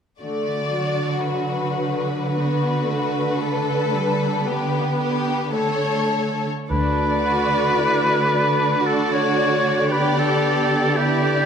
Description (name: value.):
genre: classical, slow romantic movement for symphony orchestra.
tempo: 56 BPM.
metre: 3/4.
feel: rubato.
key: D major.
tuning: A4 = 438 Hz.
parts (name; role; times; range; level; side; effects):
rich studio violin section; melody; 0.2-11.5 s; B4 to D5; -26 LUFS; left 4 dB; none.
rich studio violin section; second line; 0.2-11.5 s; D4 to A4; -26 LUFS; left 3 dB; none.
rich studio viola section; accompaniment; 0.2-11.5 s; F#3 to G4; -26 LUFS; right 2 dB; none.
warm studio cello section; bass; 0.2-11.5 s; D3; -24 LUFS; right 2 dB; none.
warm oboe; second line; 6.7-11.5 s; G4 to C#5; -20 LUFS; equal; none.
warm studio double bass section; bass; 6.7-7.8 s; D2; -26 LUFS; right 1 dB; none.
room: wet recital hall reverb, RT60 1.7 s.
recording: none.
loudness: -18 LUFS.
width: side -7 dB against mid.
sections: 0.2-6.7 A section; 6.7-11.5 B section.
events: none.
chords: 0.2 D; 3.4 A7/D; 6.7 D; 9.9 G/D.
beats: | 0.21 1.29 2.37 | 3.42 4.46 5.55 | 6.71 7.80 8.87 | 9.92 10.97.